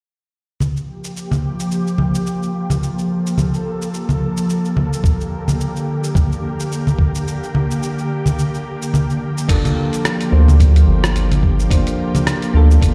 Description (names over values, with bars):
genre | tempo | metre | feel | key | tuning
sunset chillout | 108 BPM | 4/4 | swing 56% on 16ths | G minor | A4 = 442 Hz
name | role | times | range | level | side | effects
ethereal airy pad | sustained chords | 0.9-12.9 s | D3 to A4 | -24 LUFS | equal | ensemble chorus, built-in reverb
dusty soul sampler-style drum kit | drums | 0.6-12.9 s | congas, crash cymbal, hi-hat, rim click, shaker | -22 LUFS | equal | none
electronic kick drum | drums | 5.0-12.9 s | none | -17 LUFS | equal | none
soft electric-piano-like synth keys | accompaniment | 9.5-12.9 s | Bb3 to C5 | -25 LUFS | equal | chorus, low-pass filter, digital delay
round analog bass | bass | 9.5-12.9 s | G1 to D2 | -14 LUFS | equal | none
room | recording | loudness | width
light reverb, digital ambience | played on a big sound system in a bare room, large studio reverb | -17 LUFS | mono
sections
0.6-9.5 A section; 9.5-12.9 B section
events
filter sweep on ambient pad 0.6-9.5; kick drops out 7.3-9.5; filter sweep on synth keys 9.5-12.9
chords
0.6 Gm7; 4.8 Bb6; 9.2 Gm7